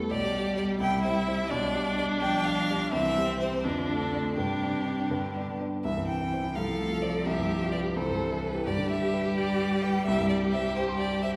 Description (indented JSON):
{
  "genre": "quick classical-period movement for piano quartet",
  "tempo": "85 BPM (dotted quarters)",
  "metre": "6/8",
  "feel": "straight",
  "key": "C major",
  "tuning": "A4 = 440 Hz",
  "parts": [
    { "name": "rich cello", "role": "second line", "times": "0.0-11.4 s", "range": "C3 to A3", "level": "-35 LUFS", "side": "equal", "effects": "none" },
    { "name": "clear viola", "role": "accompaniment", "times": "0.0-11.4 s", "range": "C4 to A4", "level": "-35 LUFS", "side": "equal", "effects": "none" },
    { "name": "warm grand piano", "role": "accompaniment", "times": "0.0-11.4 s", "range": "B1 to C6", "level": "-33 LUFS", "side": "equal", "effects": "none" },
    { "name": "warm violin", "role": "melody", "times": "0.1-11.3 s", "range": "G4 to G5", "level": "-34 LUFS", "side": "equal", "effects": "none" }
  ],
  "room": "wet recital hall reverb, RT60 1.7 s",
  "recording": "recorded in a church or concert hall",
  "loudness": "-28 LUFS",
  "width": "mono",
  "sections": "0.0-5.8 A section; 5.8-11.4 B section",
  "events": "none",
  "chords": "0.1 G/B; 0.8 C; 1.5 G/B; 2.9 C; 3.6 Dm/F; 4.4 Gsus4; 5.1 G; 5.8 C; 6.6 F/C; 7.3 G7/C; 8.0 C; 8.7 G; 10.1 C5"
}